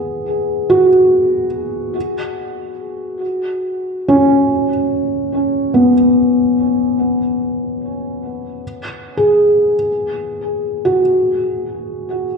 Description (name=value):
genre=ambient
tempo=free time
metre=none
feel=none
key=unclear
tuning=A4 = 440 Hz
part: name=felt-muted upright piano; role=solo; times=0.0-12.4 s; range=B3 to G#4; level=-14 LUFS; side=equal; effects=diffuse ambient delay
room=wet concert hall reverb, RT60 2.2 s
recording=dark, warm production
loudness=-13 LUFS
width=side -5 dB against mid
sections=0.0-12.4 A section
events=none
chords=0.0 Bsus2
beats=free time